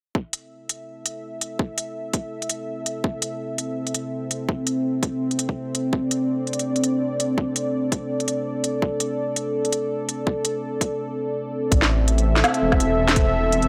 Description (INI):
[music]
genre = half-time drum and bass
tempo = 166 BPM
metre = 4/4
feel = swing 57% on 16ths, half-time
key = A minor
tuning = A4 = 439 Hz
[part]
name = dark analog pad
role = sustained chords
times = 0.8-13.7 s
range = C4 to E5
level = -26 LUFS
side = equal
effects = chorus, sidechain pumping
[part]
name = electronic kick drum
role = drums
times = 0.1-13.2 s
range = none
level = -24 LUFS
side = equal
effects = high-pass filter on kick
[part]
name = organic electronic drum kit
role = drums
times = 0.3-13.7 s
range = hi-hat, snare drum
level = -25 LUFS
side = equal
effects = none
[part]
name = dark detuned saw bass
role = bass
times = 11.7-13.7 s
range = E1 to A1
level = -24 LUFS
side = equal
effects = tube saturation
[sound]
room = light reverb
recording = dry, gritty hardware recording, transformer saturation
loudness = -24 LUFS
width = mono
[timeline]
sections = 0.2-11.7 A section; 11.7-13.7 B section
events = break 11.0-11.7; drop 11.7-13.7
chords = 0.2 Am